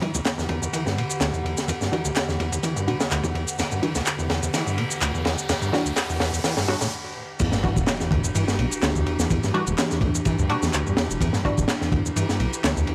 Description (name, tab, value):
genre	breakbeat, breaks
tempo	126 BPM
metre	4/4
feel	swing 54% on 16ths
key	E minor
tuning	A4 = 440 Hz
part	warbly tape-like pad	sustained chords	0.1-12.9 s	E2 to F#5	-34 LUFS	equal	chorus, built-in reverb, sidechain pumping
part	overdriven acid bass	riff	0.0-12.9 s	D2 to E3	-30 LUFS	equal	distortion, subtle chorus, cassette tape, tape echo
part	filtered dub chord stab	stabs	0.0-11.6 s	G3 to F#4	-31 LUFS	equal	phaser, lush chorus, tape echo
part	crunchy breakbeat drum kit	drums	0.0-12.9 s	crash cymbal, kick drum, ride cymbal, snare drum	-28 LUFS	equal	high-pass filter on kick, high-pass filter on cymbals, high-pass filter on snare, high-pass filter on room
part	riser and impact	sound effects	0.0-9.3 s	none	-39 LUFS	equal	none
part	electronic shaker and handclaps	drums	0.1-12.9 s	none	-31 LUFS	equal	none
part	dark detuned saw bass	bass	7.4-12.8 s	E1 to G2	-28 LUFS	equal	none
room	moderate small room reverb, RT60 0.6 s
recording	none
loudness	-24 LUFS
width	mono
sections	0.0-7.4 A section; 7.4-12.9 B section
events	build-up 0.0-7.4; filter sweep on acid bass 0.0-7.4; filter sweep on synth stab 0.0-7.4; drum fill 3.6-6.9; break 6.9-7.4; drop 7.4-12.9; impact 7.4-9.3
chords	0.0 Em9